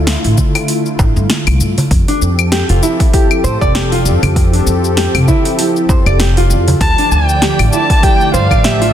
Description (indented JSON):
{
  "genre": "organic downtempo",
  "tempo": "98 BPM",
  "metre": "4/4",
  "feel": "swing 57% on 16ths",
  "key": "unclear",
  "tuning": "A4 = 440 Hz",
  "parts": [
    { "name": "warm analog pad", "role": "sustained chords", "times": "0.0-8.9 s", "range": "D3 to D5", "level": "-18 LUFS", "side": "equal", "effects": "chorus, sidechain pumping" },
    { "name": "upright bass", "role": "bass", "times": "0.0-8.9 s", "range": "F1 to A2", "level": "-14 LUFS", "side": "equal", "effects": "none" },
    { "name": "deep house drum kit", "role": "drums", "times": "0.1-8.9 s", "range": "claves, hi-hat, shaker, snare drum", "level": "-19 LUFS", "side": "left 2 dB", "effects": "overdrive" },
    { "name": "electronic kick drum", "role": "drums", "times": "0.4-8.6 s", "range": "none", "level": "-13 LUFS", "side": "equal", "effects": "overdrive" },
    { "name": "darbuka", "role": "percussion", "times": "0.4-8.6 s", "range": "none", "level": "-20 LUFS", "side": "right 1 dB", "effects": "none" },
    { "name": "nylon-string guitar", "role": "arpeggios", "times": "2.1-8.9 s", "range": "D4 to D5", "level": "-17 LUFS", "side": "right 1 dB", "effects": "tape echo" },
    { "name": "warm kamancheh", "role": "melody", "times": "6.8-8.9 s", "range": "E5 to A5", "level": "-14 LUFS", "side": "equal", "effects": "digital delay" }
  ],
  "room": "light reverb, studio reverb",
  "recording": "dense, heavily limited modern master",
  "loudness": "-10 LUFS",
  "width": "side -10 dB against mid",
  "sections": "0.0-8.9 A section",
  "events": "none",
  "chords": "0.0 Dm; 1.9 F; 6.8 Dm"
}